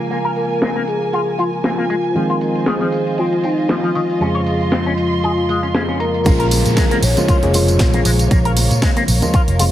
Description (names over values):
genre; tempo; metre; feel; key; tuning
nu-disco, nu disco; 117 BPM; 4/4; swing 55% on 16ths; Bb minor; A4 = 440 Hz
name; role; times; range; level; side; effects
tine electric piano; accompaniment; 0.0-9.7 s; F2 to Ab4; -20 LUFS; equal; lush chorus
muted studio violin section; sustained chords; 0.0-9.7 s; Bb3 to C6; -25 LUFS; right 1 dB; sidechain pumping
electric guitar with an envelope filter; riff; 0.1-9.6 s; Eb3 to Db5; -24 LUFS; left 2 dB; wide subtle chorus, low-pass filter, ping-pong delay
house drum kit; drums; 0.1-9.7 s; hi-hat, snare drum, tambourine; -22 LUFS; equal; low-pass filter on hats, low-pass filter on perc, low-pass filter on snare, low-pass filter on room
soft octave-layered synth lead; melody; 0.4-8.0 s; Eb4 to Db5; -21 LUFS; left 1 dB; chorus, tremolo, cassette tape, digital delay
fingered electric bass; bass; 6.3-9.7 s; F1 to Bb2; -16 LUFS; equal; none
electronic kick drum; drums; 6.3-9.4 s; none; -15 LUFS; equal; none
congas, tambourine and bongos; percussion; 6.3-9.7 s; none; -26 LUFS; equal; none
downlifter; sound effects; 6.3-9.7 s; none; -29 LUFS; right 1 dB; none
room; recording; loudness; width
moderate plate reverb, RT60 2.4 s; heavily compressed radio sound; -14 LUFS; side -12 dB against mid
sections
0.0-6.3 A section; 6.3-9.7 B section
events
drop 6.3-9.7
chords
0.0 Bbm7; 2.2 Fm7; 4.2 Dbmaj7/F; 6.3 Bbm7